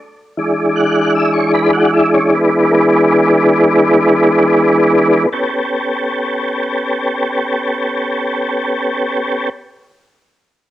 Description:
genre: blues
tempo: 43-54 BPM (dotted quarters)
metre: 12/8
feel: straight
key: unclear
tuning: A4 = 440 Hz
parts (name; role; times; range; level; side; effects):
- tonewheel organ; sustained chords; 0.4-9.5 s; E3 to F#5; -12 LUFS; equal; slow rotary speaker, chorus vibrato, cassette tape
room: moderate spring reverb, RT60 1.2 s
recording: home recording on cassette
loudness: -12 LUFS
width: side -14 dB against mid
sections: 0.0-5.3 A section; 5.3-10.7 B section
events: slowing down 0.0-5.3; tonewheel organ solo 0.0-5.3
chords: 0.4 E7; 5.3 A9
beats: | 0.39 1.53 2.71 3.97 | 5.32 6.71 8.12

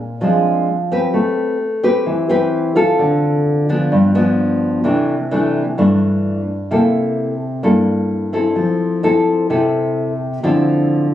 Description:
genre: bossa nova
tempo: 129 BPM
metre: 4/4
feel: straight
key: C major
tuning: A4 = 441 Hz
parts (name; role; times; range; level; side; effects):
- nylon-string guitar; solo; 0.0-11.1 s; G2 to B4; -14 LUFS; left 1 dB; none
room: moderate studio reverb, RT60 0.7 s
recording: recorded on a phone in the room, studio reverb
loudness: -14 LUFS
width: side -11 dB against mid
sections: 0.0-11.1 A section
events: none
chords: 0.0 Bb9; 1.1 Am9; 3.0 Dm7; 3.9 G7; 4.8 C69; 6.7 C6; 8.6 Fmaj7; 10.4 Dm9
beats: 0.20 0.66 | 1.13 1.59 2.06 2.52 | 2.99 3.45 3.92 4.38 | 4.85 5.31 5.78 6.24 | 6.71 7.17 7.63 8.10 | 8.56 9.03 9.49 9.96 | 10.42 10.88

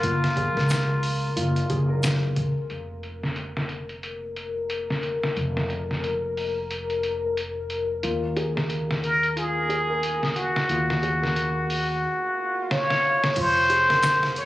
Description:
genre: trip hop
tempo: 90 BPM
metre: 4/4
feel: swing 58% on 16ths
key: F phrygian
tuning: A4 = 439 Hz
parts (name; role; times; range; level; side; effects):
- trumpet with plunger mute; melody; 0.0-2.0, 9.0-14.5 s; F4 to Db5; -23 LUFS; equal; tape echo
- deep dark ambient pad; sustained chords; 0.0-14.5 s; Bb4 to F5; -32 LUFS; left 4 dB; chorus, built-in reverb
- felt-muted upright piano; arpeggios; 0.0-2.7, 8.0-14.5 s; F4 to Bb4; -32 LUFS; equal; tape echo
- upright bass; bass; 0.0-14.5 s; F1 to Eb2; -29 LUFS; equal; none
- trip hop sampler-style drum kit; drums; 0.0-14.5 s; crash cymbal, hi-hat, kick drum, snare drum; -29 LUFS; equal; low-pass filter on hats, vintage 12-bit sampler grit, low-pass filter on kick, low-pass filter on snare, low-pass filter on cymbals, low-pass filter on room
- egg shaker; percussion; 0.7-2.2, 14.0-14.2 s; none; -41 LUFS; right 3 dB; none
- swell; sound effects; 12.3-13.4 s; none; -35 LUFS; right 1 dB; none
room: light reverb, studio reverb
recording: recorded on a phone in the room, club reverb, compression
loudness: -22 LUFS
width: side -16 dB against mid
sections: 0.0-2.7 A section; 2.7-13.4 B section; 13.4-14.5 A section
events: swell 12.3-13.4; drum fill 12.7-13.4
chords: 0.0 Gbmaj7; 2.7 Fsus4; 8.0 Ebm; 13.4 Fm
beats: | 0.03 0.70 1.36 2.03 | 2.70 3.36 4.03 4.70 | 5.36 6.03 6.70 7.36 | 8.03 8.70 9.36 10.03 | 10.70 11.36 12.03 12.70 | 13.36 14.03

